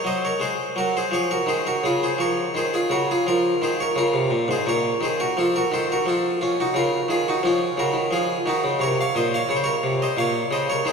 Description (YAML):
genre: classical, baroque-style suite movement for harpsichord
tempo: 87 BPM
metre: 4/4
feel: rubato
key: unclear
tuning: A4 = 441 Hz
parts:
  - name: harpsichord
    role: solo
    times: 0.0-10.9 s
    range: Ab2 to F5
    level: -20 LUFS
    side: equal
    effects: none
room: wet cathedral reverb, RT60 5.4 s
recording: recorded in a church or concert hall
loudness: -20 LUFS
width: side -5 dB against mid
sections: 0.0-10.9 A section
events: none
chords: 0.0 Ab7; 1.1 Db; 4.0 Bbm; 5.4 F7; 6.7 Bbm/Db; 9.5 Bbm